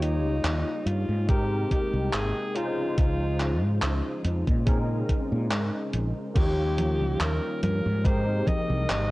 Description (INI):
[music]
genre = vaporwave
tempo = 71 BPM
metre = 4/4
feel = swing 54% on 16ths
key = unclear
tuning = A4 = 437 Hz
[part]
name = bright alto saxophone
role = melody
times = 0.0-9.1 s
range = Eb4 to Eb5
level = -31 LUFS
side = left 1 dB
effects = tape echo
[part]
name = barky tine electric piano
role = accompaniment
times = 0.0-9.1 s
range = Ab3 to G5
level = -32 LUFS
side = equal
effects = ensemble chorus
[part]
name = soft string machine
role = sustained chords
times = 0.0-9.1 s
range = C3 to G5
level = -38 LUFS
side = equal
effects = none
[part]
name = mellow fretless electric bass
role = bass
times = 0.0-9.1 s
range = Ab1 to Bb2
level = -27 LUFS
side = equal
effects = none
[part]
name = gated 80s digital drum machine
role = drums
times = 0.0-9.1 s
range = congas, crash cymbal, handclaps, hi-hat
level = -32 LUFS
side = equal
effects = gated reverb
[part]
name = electronic kick drum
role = drums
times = 1.3-8.7 s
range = none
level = -24 LUFS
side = equal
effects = none
[sound]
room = light reverb, digital ambience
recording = worn, warbling old tape, cassette tape, warbly pitch drift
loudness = -24 LUFS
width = side -19 dB against mid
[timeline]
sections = 0.0-9.1 A section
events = none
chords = 0.0 Eb9; 1.3 Abmaj9; 2.6 Dbmaj9; 4.7 Bbm11; 6.4 Eb9; 8.0 Abmaj9